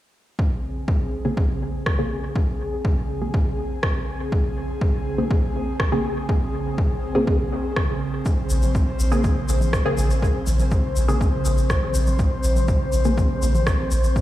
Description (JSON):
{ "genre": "dub techno", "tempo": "122 BPM", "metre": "4/4", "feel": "straight", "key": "Bb minor", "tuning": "A4 = 441 Hz", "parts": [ { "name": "airy breathy pad", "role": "sustained chords", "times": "0.5-14.2 s", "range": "Db3 to C5", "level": "-27 LUFS", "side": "equal", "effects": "chorus, sidechain pumping" }, { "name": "electronic kick drum", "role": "drums", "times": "0.4-14.2 s", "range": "none", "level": "-23 LUFS", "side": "equal", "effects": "none" }, { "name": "filtered dub chord stab", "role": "stabs", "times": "1.2-13.2 s", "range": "Db3 to Ab4", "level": "-26 LUFS", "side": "equal", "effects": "chorus, phaser, sidechain pumping, dub echo" }, { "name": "electronic rim click", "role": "drums", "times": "1.9-13.8 s", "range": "none", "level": "-29 LUFS", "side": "equal", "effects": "dub echo" }, { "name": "tube shaker", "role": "percussion", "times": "8.3-14.2 s", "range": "none", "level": "-35 LUFS", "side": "left 3 dB", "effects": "none" }, { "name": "soft dub sub bass", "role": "bass", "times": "8.5-14.1 s", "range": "Bb1", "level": "-20 LUFS", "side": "equal", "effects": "sidechain pumping" }, { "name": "electronic congas and toms", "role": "percussion", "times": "8.6-13.9 s", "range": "none", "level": "-34 LUFS", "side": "right 1 dB", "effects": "none" } ], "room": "moderate lush hall reverb, RT60 1.8 s", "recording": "played on a big sound system in a bare room, stone room reverb", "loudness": "-19 LUFS", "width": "side -14 dB against mid", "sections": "0.4-14.2 A section", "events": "filter sweep on synth stab 0.4-14.2", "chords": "0.4 Bbm9" }